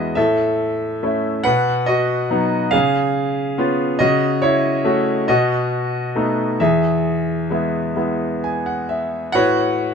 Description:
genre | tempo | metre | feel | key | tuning
classical, lyrical solo piano | 43-48 BPM (dotted quarters) | 6/8 | rubato | E major | A4 = 440 Hz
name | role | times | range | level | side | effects
bright grand piano | solo | 0.0-9.9 s | E2 to G#5 | -16 LUFS | equal | none
room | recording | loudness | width
light reverb | close, detailed microphones | -16 LUFS | side -6 dB against mid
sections
0.0-9.3 A section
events
grand piano fill 8.0-9.3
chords
0.2 A; 1.4 B; 2.7 C#7; 4.0 F#m/C#; 5.3 B7; 6.6 E; 9.3 Aadd9

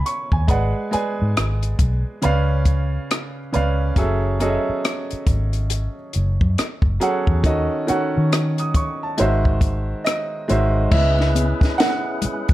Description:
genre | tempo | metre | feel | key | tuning
R&B, neo-soul | 69 BPM | 4/4 | swing 63% on 16ths | C# minor | A4 = 440 Hz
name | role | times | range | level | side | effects
clear grand piano | accompaniment | 0.0-12.5 s | C#3 to D#6 | -22 LUFS | right 2 dB | none
compact cocktail drum kit | drums | 0.1-12.5 s | crash cymbal, hi-hat, kick drum, rim click, snare drum | -20 LUFS | equal | none
vintage muted fingered electric bass | bass | 0.3-12.5 s | F#1 to D#3 | -20 LUFS | equal | none
tonewheel organ | sustained chords | 10.9-12.5 s | C#4 to B4 | -27 LUFS | equal | fast rotary speaker, overdrive
congas | percussion | 10.9-12.5 s | none | -28 LUFS | left 5 dB | none
room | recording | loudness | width
light reverb | none | -18 LUFS | side -15 dB against mid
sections
0.0-10.9 A section; 10.9-12.5 B section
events
grand piano solo 10.9-12.5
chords
0.5 G#m7b5; 2.2 C#7b9; 4.0 F#m7; 7.4 D#m7b5; 9.2 G#7b13; 10.9 C#m7

